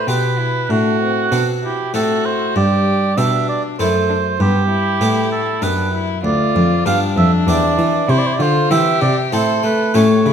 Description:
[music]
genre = classical, baroque-style sonata movement with continuo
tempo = 97 BPM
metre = 3/4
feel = straight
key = G major, C major from 6.2 s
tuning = A4 = 439 Hz
[part]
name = warm violin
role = melody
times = 0.0-10.3 s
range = B3 to A4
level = -23 LUFS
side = left 7 dB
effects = none
[part]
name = warm oboe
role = second line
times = 0.0-10.3 s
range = F#4 to F5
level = -19 LUFS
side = right 6 dB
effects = none
[part]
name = harpsichord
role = accompaniment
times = 0.0-10.3 s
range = D2 to A4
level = -19 LUFS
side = left 1 dB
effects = none
[part]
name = rich cello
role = bass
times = 0.0-10.3 s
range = D2 to A3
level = -19 LUFS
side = equal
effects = none
[sound]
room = wet recital hall reverb, RT60 1.4 s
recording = none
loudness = -14 LUFS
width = side -8 dB against mid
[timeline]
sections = 0.0-10.3 A section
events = none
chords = 0.1 G/B; 0.7 D7/A; 2.6 G; 3.8 D7/F#; 4.4 G; 6.2 G7/D; 7.5 C/E; 8.1 C; 9.3 Am

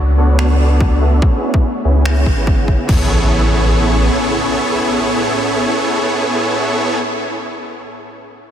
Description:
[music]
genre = future bass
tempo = 144 BPM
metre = 4/4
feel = half-time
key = A major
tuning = A4 = 440 Hz
[part]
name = ethereal airy pad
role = sustained chords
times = 0.0-7.0 s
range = A2 to E4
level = -24 LUFS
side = equal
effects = ensemble chorus, built-in reverb, vintage 12-bit sampler grit, sidechain pumping
[part]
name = saturated sub bass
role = bass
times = 0.0-4.1 s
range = G#1 to C#2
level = -13 LUFS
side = equal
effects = sidechain pumping
[part]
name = supersaw chords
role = riff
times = 0.2-7.0 s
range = B3 to F#5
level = -17 LUFS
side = right 1 dB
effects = vintage 12-bit sampler grit, sidechain pumping, low-pass filter, analog delay
[part]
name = trap drum kit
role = drums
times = 0.4-3.0 s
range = crash cymbal, finger snaps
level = -26 LUFS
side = equal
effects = none
[part]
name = electronic kick drum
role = drums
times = 0.8-3.0 s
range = none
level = -14 LUFS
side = equal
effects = none
[part]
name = impact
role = sound effects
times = 2.9-7.4 s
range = none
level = -23 LUFS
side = equal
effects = none
[sound]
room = moderate huge ambient reverb, RT60 4.2 s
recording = dreamy mix soaked in reverb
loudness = -12 LUFS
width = side -10 dB against mid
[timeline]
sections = 0.0-2.9 A section; 2.9-6.2 B section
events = filter sweep on sub bass 0.0-2.9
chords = 0.0 Bm9; 1.2 C#m7; 2.9 Amaj9

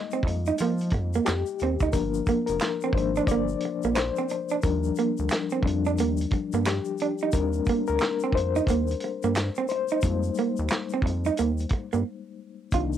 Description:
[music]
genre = R&B, neo-soul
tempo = 89 BPM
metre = 4/4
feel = swing 60% on 16ths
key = unclear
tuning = A4 = 441 Hz
[part]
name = reed electric piano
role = accompaniment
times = 0.0-13.0 s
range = Eb3 to Eb5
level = -29 LUFS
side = left 8 dB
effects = fast tremolo, cassette tape
[part]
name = electric guitar through a small old amp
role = second line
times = 0.1-12.9 s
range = Bb3 to F4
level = -26 LUFS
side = right 8 dB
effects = cassette tape
[part]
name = egg shaker and finger snaps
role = percussion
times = 0.1-13.0 s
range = none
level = -42 LUFS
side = right 1 dB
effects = none
[part]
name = rubbery square bass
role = bass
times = 0.2-13.0 s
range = F1 to F3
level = -28 LUFS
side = equal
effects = tube saturation
[part]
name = warm soul drum kit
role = drums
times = 0.2-12.9 s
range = handclaps, hi-hat, kick drum, snare drum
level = -27 LUFS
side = equal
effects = cassette tape
[sound]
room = light reverb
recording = home recording on cassette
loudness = -23 LUFS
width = side -10 dB against mid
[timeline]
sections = 0.0-12.7 A section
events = reed electric piano solo 0.0-12.7; break 12.0-12.7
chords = 0.0 Fm11; 1.9 Gm7; 4.6 Ebmaj13/D; 10.0 Fm11

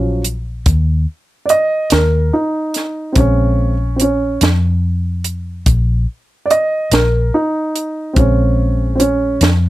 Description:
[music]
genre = slow blues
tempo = 48 BPM (dotted quarters)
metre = 12/8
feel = straight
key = Bb minor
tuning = A4 = 441 Hz
[part]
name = dark upright piano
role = accompaniment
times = 0.0-9.4 s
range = Db3 to Eb5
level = -15 LUFS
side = right 2 dB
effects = none
[part]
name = vintage muted fingered electric bass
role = bass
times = 0.0-9.7 s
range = Bb1 to F2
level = -15 LUFS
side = left 1 dB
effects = none
[part]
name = compact cocktail drum kit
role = drums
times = 0.2-9.6 s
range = hi-hat, kick drum, snare drum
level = -16 LUFS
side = right 1 dB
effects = none
[sound]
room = little or no reverb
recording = none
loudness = -13 LUFS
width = side -16 dB against mid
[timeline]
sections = 0.0-9.7 A section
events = upright piano solo 0.0-9.7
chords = 0.0 Eb5; 3.2 Bbm7

